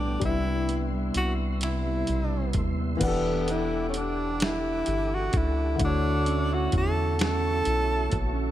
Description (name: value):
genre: slow six-eight R&B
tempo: 43 BPM (dotted quarters)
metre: 6/8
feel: straight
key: unclear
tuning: A4 = 440 Hz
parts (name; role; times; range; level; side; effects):
- breathy tenor saxophone; melody; 0.0-8.2 s; A#3 to A4; -29 LUFS; equal; analog delay
- mellow electric guitar; second line; 0.0-8.5 s; A2 to G4; -34 LUFS; right 6 dB; none
- warm grand piano; accompaniment; 0.0-8.5 s; A2 to F#5; -32 LUFS; left 4 dB; analog delay
- tonewheel organ; sustained chords; 0.0-8.5 s; B3 to D6; -38 LUFS; equal; chorus vibrato, slow rotary speaker
- round analog bass; bass; 0.0-8.5 s; E1 to E2; -29 LUFS; equal; none
- dusty soul sampler-style drum kit; drums; 0.2-8.3 s; crash cymbal, finger snaps, hi-hat, kick drum, snare drum; -30 LUFS; equal; none
room: light reverb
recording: echo-heavy mix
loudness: -24 LUFS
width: side -12 dB against mid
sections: 0.0-3.0 A section; 3.0-8.5 B section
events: none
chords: 0.2 Cmaj7; 3.0 Em11; 5.8 Dmaj9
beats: | 0.22 1.61 | 3.01 4.41 | 5.80 7.20